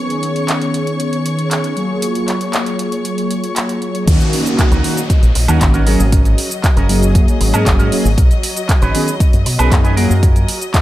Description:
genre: nu-disco, nu disco.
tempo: 117 BPM.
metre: 4/4.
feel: straight.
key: Eb minor.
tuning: A4 = 444 Hz.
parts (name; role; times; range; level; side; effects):
mellow synth brass; accompaniment; 0.0-10.1 s; D#3 to G#4; -18 LUFS; equal; chorus, analog delay.
rich studio string section; sustained chords; 0.0-10.8 s; Gb3 to Db6; -24 LUFS; left 2 dB; sidechain pumping.
pop drum kit; drums; 0.1-10.8 s; crash cymbal, handclaps, hi-hat, shaker, woodblock; -21 LUFS; right 1 dB; studio reverb.
fingered electric bass with an envelope filter; bass; 4.1-10.4 s; Gb1 to B2; -15 LUFS; equal; sidechain pumping.
electronic kick drum; drums; 4.1-10.8 s; none; -13 LUFS; equal; studio reverb.
downlifter; sound effects; 4.1-8.2 s; none; -27 LUFS; equal; none.
electric guitar with an envelope filter; riff; 4.6-10.8 s; Db4 to B4; -23 LUFS; right 4 dB; wide subtle chorus.
room: digital ambience.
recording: none.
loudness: -12 LUFS.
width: side -15 dB against mid.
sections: 0.0-4.1 A section; 4.1-10.8 B section.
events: drop 4.1-10.8.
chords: 0.0 B69; 1.8 Gbmaj9; 4.1 Ebm7; 5.9 Ab9sus4; 8.2 B69; 10.0 Gbmaj9.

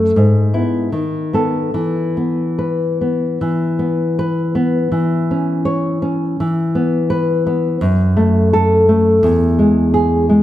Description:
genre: romantic piece for solo classical guitar.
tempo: 69-88 BPM.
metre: 2/4.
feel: rubato.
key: E major.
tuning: A4 = 440 Hz.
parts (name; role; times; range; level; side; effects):
nylon-string guitar; solo; 0.0-10.4 s; E2 to C#5; -13 LUFS; equal; none.
room: moderate recital hall reverb, RT60 1.6 s.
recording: none.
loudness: -14 LUFS.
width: side -13 dB against mid.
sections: 0.0-3.4 A section; 3.4-10.4 A section.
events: none.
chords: 0.2 E/G#; 0.9 B7/D#; 1.7 E5; 4.9 C#m/E; 6.4 E5; 7.8 F#m; 9.2 E.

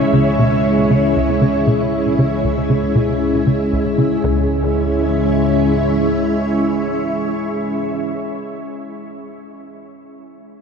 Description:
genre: ambient.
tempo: 117 BPM.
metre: 4/4.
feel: straight.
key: C# minor.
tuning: A4 = 441 Hz.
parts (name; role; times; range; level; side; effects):
string machine, full ensemble; sustained chords; 0.0-8.4 s; G#3 to E5; -17 LUFS; equal; ensemble chorus.
tight sequencer bass; riff; 0.0-4.5 s; C#2 to C#3; -19 LUFS; equal; ensemble chorus, tape echo.
analog drone; bass; 0.0-5.7 s; C#2; -24 LUFS; equal; chorus.
room: wet huge ambient reverb, RT60 7.9 s.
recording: none.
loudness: -14 LUFS.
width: side -6 dB against mid.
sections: 0.0-4.2 A section; 4.2-8.3 B section.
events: filter sweep on analog synth bass 0.0-4.2.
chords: 0.0 C#m.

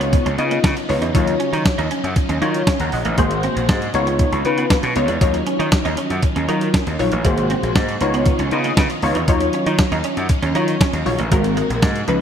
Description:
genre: early-eighties boogie funk.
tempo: 118 BPM.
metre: 4/4.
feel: straight.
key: Eb minor.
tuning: A4 = 440 Hz.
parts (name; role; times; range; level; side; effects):
funky polysynth comp; accompaniment; 0.0-12.2 s; F3 to Bb5; -21 LUFS; left 2 dB; chorus.
string machine, full ensemble; sustained chords; 0.0-12.2 s; C3 to Gb4; -28 LUFS; equal; ensemble chorus.
clean electric guitar; riff; 0.0-12.1 s; Ab3 to Eb4; -26 LUFS; right 5 dB; ensemble chorus.
gritty slap bass; bass; 0.0-12.2 s; Ab1 to Eb3; -22 LUFS; equal; overdrive.
crisp 8-bit digital drum machine; drums; 0.0-12.2 s; hi-hat, kick drum, snare drum; -19 LUFS; equal; none.
room: moderate lush hall reverb, RT60 2.8 s.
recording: bright 1980s-style digital production.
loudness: -16 LUFS.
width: side -8 dB against mid.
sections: 0.0-12.2 A section.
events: none.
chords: 0.0 Db9; 1.1 Ebm9; 3.2 Ab9; 3.9 Db9; 5.2 Ebm9; 7.2 Ab9; 8.0 Db9; 9.3 Ebm9; 11.3 Ab9.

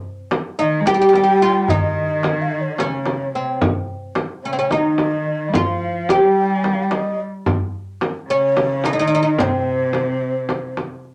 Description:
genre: Turkish makam ensemble.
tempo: 218 BPM (eighths).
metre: 7/8.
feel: straight.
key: unclear.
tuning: A4 = 437 Hz.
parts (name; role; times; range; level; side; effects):
darbuka; percussion; 0.0-11.1 s; none; -28 LUFS; equal; none.
frame drum; percussion; 0.3-10.9 s; none; -25 LUFS; equal; none.
oud; melody; 0.6-10.7 s; C4 to G4; -22 LUFS; equal; none.
breathy low ney; second line; 0.6-10.8 s; C5 to Ab5; -25 LUFS; equal; none.
warm cello; second line; 0.6-10.8 s; C3 to Ab3; -26 LUFS; equal; none.
room: wet club reverb, RT60 0.5 s.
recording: none.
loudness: -19 LUFS.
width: mono.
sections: 0.0-11.1 A section.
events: none.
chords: none.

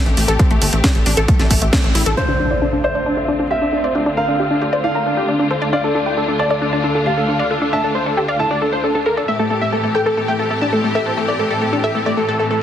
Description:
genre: uplifting trance.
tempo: 135 BPM.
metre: 4/4.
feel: straight.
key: D minor.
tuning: A4 = 439 Hz.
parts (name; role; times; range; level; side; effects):
clear symphonic string section; sustained chords; 0.0-12.6 s; D2 to G4; -22 LUFS; left 1 dB; sidechain pumping, low-pass filter.
wide unison pluck; arpeggios; 0.1-12.5 s; A3 to D5; -21 LUFS; left 2 dB; phaser, sidechain pumping, dub echo.
tight sequencer bass; bass; 0.1-2.1 s; G1 to A1; -18 LUFS; equal; sidechain pumping.
house drum kit; drums; 0.1-2.2 s; hi-hat, snare drum; -21 LUFS; right 1 dB; overdrive, sidechain pumping on hats, low-pass filter on hats, low-pass filter on snare, low-pass filter on room.
electronic kick drum; drums; 0.4-1.8 s; none; -15 LUFS; equal; overdrive.
supersaw stab; melody; 2.2-12.6 s; D4 to A5; -20 LUFS; equal; vintage 12-bit sampler grit, sidechain pumping, low-pass filter, ping-pong delay.
warm baby grand piano; second line; 2.2-9.2 s; C5 to A5; -22 LUFS; right 1 dB; dub echo.
impact; sound effects; 2.2-4.0 s; none; -25 LUFS; equal; none.
room: moderate lush hall reverb, RT60 2.0 s.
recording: heavily compressed radio sound.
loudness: -15 LUFS.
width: side -10 dB against mid.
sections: 0.0-2.2 A section; 2.2-12.6 B section.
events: band accent 1.7; impact 2.2-4.0; filter sweep on supersaw synth 2.2-12.6.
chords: 0.0 Am7; 2.2 Dm7; 9.3 Am7.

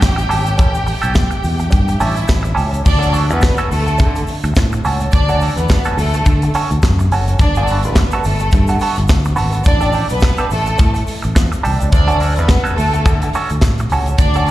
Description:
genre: disco.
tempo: 106 BPM.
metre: 4/4.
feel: swing 56% on 16ths.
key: D major.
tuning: A4 = 440 Hz.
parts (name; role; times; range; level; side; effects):
rich studio violin section; second line; 0.0-14.4 s; A3 to G5; -21 LUFS; equal; slapback echo.
semi-hollow electric guitar; accompaniment; 0.0-14.5 s; B3 to A4; -21 LUFS; right 3 dB; wah, slapback echo.
fingered electric bass; bass; 0.0-14.5 s; F#1 to D3; -16 LUFS; equal; none.
modern studio drum kit; drums; 0.0-14.5 s; crash cymbal, hi-hat, kick drum, snare drum; -16 LUFS; equal; none.
tube shaker; percussion; 0.0-14.5 s; none; -38 LUFS; left 5 dB; none.
room: small room ambience.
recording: live gig heard through the venue's PA, recital hall reverb.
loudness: -12 LUFS.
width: side -15 dB against mid.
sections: 0.0-2.9 A section; 2.9-14.5 B section.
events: none.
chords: 0.0 A7; 2.9 Dmaj7; 7.4 Gmaj9; 9.7 A7sus4; 11.9 Dmaj7.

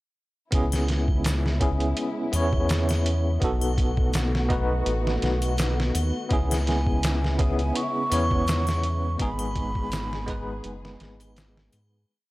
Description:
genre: trip hop.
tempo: 83 BPM.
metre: 4/4.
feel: swing 54% on 16ths.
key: C# minor.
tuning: A4 = 440 Hz.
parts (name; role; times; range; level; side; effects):
bell-like tine electric piano; accompaniment; 0.5-12.1 s; G#3 to C#5; -29 LUFS; equal; medium stereo tremolo, tape echo.
dark studio string section; sustained chords; 0.5-12.1 s; C#3 to G#4; -34 LUFS; left 2 dB; none.
round analog bass; bass; 0.5-12.1 s; F#1 to G#2; -26 LUFS; equal; none.
trip hop sampler-style drum kit; drums; 0.5-11.9 s; hi-hat, kick drum, snare drum; -27 LUFS; equal; studio reverb.
triangle and egg shaker; percussion; 0.7-11.9 s; none; -39 LUFS; left 3 dB; none.
mellow hollow concert flute; melody; 6.7-11.3 s; G#5 to C#6; -31 LUFS; right 1 dB; none.
room: small room ambience.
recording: dry, gritty hardware recording.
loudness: -22 LUFS.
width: side -19 dB against mid.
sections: 0.5-12.1 groove.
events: fade-out 8.2-12.1.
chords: 0.5 C#m7; 3.4 B7; 6.3 C#m7; 9.2 G#m.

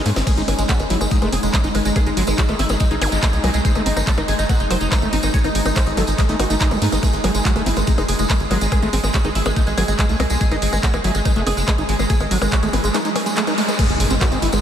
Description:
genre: psychedelic trance.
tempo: 142 BPM.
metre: 4/4.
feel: straight.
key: unclear.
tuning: A4 = 440 Hz.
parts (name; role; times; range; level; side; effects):
bubbling stepped-filter texture; sustained chords; 0.0-14.6 s; G#3 to G#4; -26 LUFS; right 1 dB; chorus, built-in reverb, sidechain pumping.
overdriven acid bass; riff; 0.0-14.4 s; F#3 to D#4; -25 LUFS; left 1 dB; distortion, auto-pan, sidechain pumping, ping-pong delay.
swell, zap, riser and impact; sound effects; 0.0-0.3, 3.0-3.1, 11.9-14.6 s; none; -31 LUFS; equal; none.
tight sequencer bass; bass; 0.1-14.6 s; F#1 to G#2; -22 LUFS; equal; none.
techno drum kit; drums; 0.1-14.6 s; crash cymbal, handclaps, hi-hat, percussion blips, snare drum; -24 LUFS; left 1 dB; none.
supersaw stab; melody; 0.3-14.6 s; G#3 to C#5; -24 LUFS; right 1 dB; phaser, sidechain pumping, analog delay.
electronic kick drum; drums; 0.3-14.3 s; none; -18 LUFS; equal; none.
tambourine; percussion; 0.3-14.6 s; none; -31 LUFS; right 2 dB; none.
room: moderate huge ambient reverb, RT60 8.2 s.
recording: dreamy mix soaked in reverb.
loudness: -16 LUFS.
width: side -9 dB against mid.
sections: 0.0-13.8 A section.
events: drum fill 0.0; band accent 13.4; impact 13.8-14.6.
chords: 0.0 G#5.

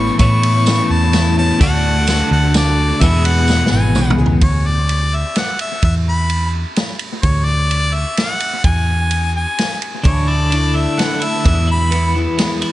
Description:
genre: folk rock and heartland rock.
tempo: 128 BPM.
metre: 3/4.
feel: straight.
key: unclear.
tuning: A4 = 441 Hz.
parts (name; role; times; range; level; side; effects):
clear harmonica; melody; 0.0-12.1 s; C#5 to C#6; -20 LUFS; left 2 dB; analog delay.
picked twelve-string acoustic guitar; accompaniment; 0.0-4.4, 10.0-12.7 s; E2 to G#4; -23 LUFS; left 4 dB; analog delay.
twelve-string electric guitar; riff; 0.0-4.4, 10.0-12.7 s; E2 to G#4; -19 LUFS; equal; tremolo, analog delay.
hollow-body short-scale picked electric bass; bass; 0.0-12.3 s; G#1 to A2; -16 LUFS; equal; none.
tambourine; percussion; 0.1-4.1 s; none; -31 LUFS; right 6 dB; none.
vintage drum kit; drums; 0.2-12.7 s; kick drum, ride cymbal, snare drum, toms; -19 LUFS; equal; analog delay.
room: small room ambience.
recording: echo-heavy mix, nothing above 10.5 kHz.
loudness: -13 LUFS.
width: side -15 dB against mid.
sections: 0.0-4.4 A section; 4.4-12.7 B section.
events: drum fill 3.5-4.4.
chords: 0.0 Aadd9; 1.6 D; 3.0 E; 4.4 Dsus2; 5.8 E5; 7.2 D; 8.6 E; 10.0 Dsus2; 11.5 E.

